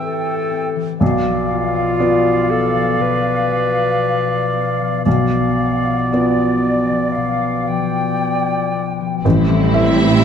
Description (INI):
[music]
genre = cinematic, emotional film score for orchestra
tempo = 56-61 BPM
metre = 4/4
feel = rubato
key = unclear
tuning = A4 = 440 Hz
[part]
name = flute section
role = second line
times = 0.0-9.2 s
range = D5 to G5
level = -23 LUFS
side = left 1 dB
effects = none
[part]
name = mellow oboe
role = second line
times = 0.0-8.9 s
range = D5 to E5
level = -23 LUFS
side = right 3 dB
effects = none
[part]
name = warm clarinet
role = second line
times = 0.0-10.2 s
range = B3 to B4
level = -22 LUFS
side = right 1 dB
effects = none
[part]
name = felt-muted upright piano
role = accompaniment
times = 0.0-10.2 s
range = A1 to E5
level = -20 LUFS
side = equal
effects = none
[part]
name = concert harp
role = arpeggios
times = 0.0-10.2 s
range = A2 to D5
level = -22 LUFS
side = left 9 dB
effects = none
[part]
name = warm studio violin section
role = melody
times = 9.2-10.2 s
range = E4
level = -22 LUFS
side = left 1 dB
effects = none
[part]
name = warm chamber viola section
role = accompaniment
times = 9.2-10.2 s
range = G3 to C4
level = -19 LUFS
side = right 1 dB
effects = none
[part]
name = warm studio cello section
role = bass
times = 9.2-10.2 s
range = A2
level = -20 LUFS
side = right 6 dB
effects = none
[part]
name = warm studio double bass section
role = bass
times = 9.2-10.2 s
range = A1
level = -19 LUFS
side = right 5 dB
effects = none
[part]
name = warm studio violin section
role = second line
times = 9.7-10.2 s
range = E5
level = -23 LUFS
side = equal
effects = none
[sound]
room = moderate scoring stage reverb, RT60 2.2 s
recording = close, detailed microphones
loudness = -15 LUFS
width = side -7 dB against mid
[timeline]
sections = 0.0-9.2 A section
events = none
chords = 0.0 Am7; 1.0 Bdim; 9.2 Am7